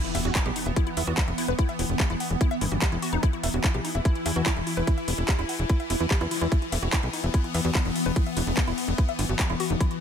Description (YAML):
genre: psychedelic trance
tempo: 146 BPM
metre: 4/4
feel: straight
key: E harmonic minor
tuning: A4 = 444 Hz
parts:
  - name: evolving wavetable pad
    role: sustained chords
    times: 0.0-10.0 s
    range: E3 to E4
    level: -30 LUFS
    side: left 2 dB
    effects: ensemble chorus, built-in reverb, sidechain pumping
  - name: woody wave-folded pluck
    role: riff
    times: 0.0-10.0 s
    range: D#4 to F#5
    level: -33 LUFS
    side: moving between left 5 dB and right 5 dB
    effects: chorus, auto-pan, sidechain pumping, ping-pong delay
  - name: garage drum kit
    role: drums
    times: 0.0-10.0 s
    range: handclaps, hi-hat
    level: -31 LUFS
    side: left 1 dB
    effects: none
  - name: impact and zap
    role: sound effects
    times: 0.0-1.6, 6.2-6.3 s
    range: none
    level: -38 LUFS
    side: equal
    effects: none
  - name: tight sequencer bass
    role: bass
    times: 0.1-9.8 s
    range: E1 to E2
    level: -27 LUFS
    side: equal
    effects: none
  - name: electronic kick drum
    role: drums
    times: 0.4-9.9 s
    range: none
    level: -23 LUFS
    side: equal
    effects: none
room: digital ambience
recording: none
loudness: -23 LUFS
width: side -8 dB against mid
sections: 0.0-10.0 A section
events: impact 0.0-1.6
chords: 0.0 E5